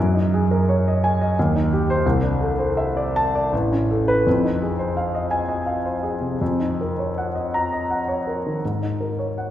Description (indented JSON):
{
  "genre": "classical, impressionist solo piano",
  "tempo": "82 BPM",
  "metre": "3/4",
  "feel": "uneven beats, rubato",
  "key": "unclear",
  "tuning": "A4 = 440 Hz",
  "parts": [
    { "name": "warm grand piano", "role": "solo", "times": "0.0-9.5 s", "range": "A1 to Bb5", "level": "-19 LUFS", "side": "equal", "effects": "none" }
  ],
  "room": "wet concert hall reverb, RT60 1.9 s",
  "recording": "heard from further back in the room",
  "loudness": "-19 LUFS",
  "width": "side -12 dB against mid",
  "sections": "0.0-9.5 A section",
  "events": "none",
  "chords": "0.0 Gb69; 1.4 Eb6; 2.0 C69; 3.5 Aadd9; 4.3 Fm7; 6.4 Ebm9/F; 8.6 Ab9sus4"
}